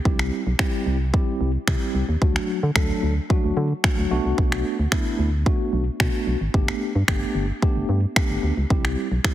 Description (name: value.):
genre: dance-pop.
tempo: 111 BPM.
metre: 4/4.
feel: straight.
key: G major.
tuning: A4 = 440 Hz.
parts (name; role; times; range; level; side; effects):
mellow tine electric piano; accompaniment; 0.1-9.3 s; F#3 to A4; -26 LUFS; equal; medium stereo tremolo, sidechain pumping.
organ-like FM bass; bass; 0.1-9.2 s; G1 to D3; -23 LUFS; equal; sidechain pumping.
pop drum kit; drums; 0.1-9.3 s; finger snaps, kick drum; -22 LUFS; equal; none.
room: light reverb.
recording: heavily compressed radio sound, multiband compression.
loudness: -20 LUFS.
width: side -13 dB against mid.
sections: 0.0-9.3 A section.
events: none.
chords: 0.1 C; 2.2 D; 4.1 Bm7; 6.5 Gadd9; 8.7 C.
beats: | 0.06 0.60 1.14 1.68 | 2.22 2.76 3.30 3.84 | 4.38 4.92 5.46 6.00 | 6.54 7.08 7.62 8.16 | 8.71 9.24.